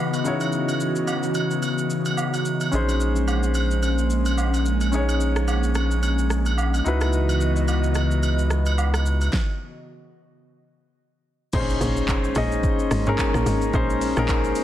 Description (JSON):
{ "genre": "amapiano", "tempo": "109 BPM", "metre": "4/4", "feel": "swing 58% on 16ths", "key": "Bb minor", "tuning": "A4 = 440 Hz", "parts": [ { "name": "warm grand piano", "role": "accompaniment", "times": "0.0-14.6 s", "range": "Db3 to Eb5", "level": "-26 LUFS", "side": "left 2 dB", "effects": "none" }, { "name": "airy breathy pad", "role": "sustained chords", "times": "0.0-14.6 s", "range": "Db3 to Eb5", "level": "-27 LUFS", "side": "left 1 dB", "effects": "chorus, sidechain pumping" }, { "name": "deep house drum kit", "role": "drums", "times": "0.1-14.6 s", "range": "crash cymbal, handclaps, hi-hat, kick drum, rim click, shaker, snare drum, toms", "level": "-28 LUFS", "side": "equal", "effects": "vintage 12-bit sampler grit" }, { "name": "agogo bells and woodblock", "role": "percussion", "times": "0.1-9.3 s", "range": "none", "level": "-29 LUFS", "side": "right 4 dB", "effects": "none" }, { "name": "saturated sub bass", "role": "bass", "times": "2.7-9.3 s", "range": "Bb1 to Db2", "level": "-21 LUFS", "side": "equal", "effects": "none" }, { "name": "tight log drum bass", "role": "bass", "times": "11.5-14.5 s", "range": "Ab1 to Bb1", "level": "-25 LUFS", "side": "equal", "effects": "none" }, { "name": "impact", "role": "sound effects", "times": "11.5-13.7 s", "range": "none", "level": "-33 LUFS", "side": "right 1 dB", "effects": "none" } ], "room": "little or no reverb", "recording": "dense, heavily limited modern master", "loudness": "-20 LUFS", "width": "side -12 dB against mid", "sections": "0.0-11.5 A section; 11.5-14.6 B section", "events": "stop 9.3-11.5; drop 11.5-14.6; impact 11.5-13.7", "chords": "0.0 Dbm11; 2.7 Bbm11; 6.9 Dbm11; 11.5 Bbm11" }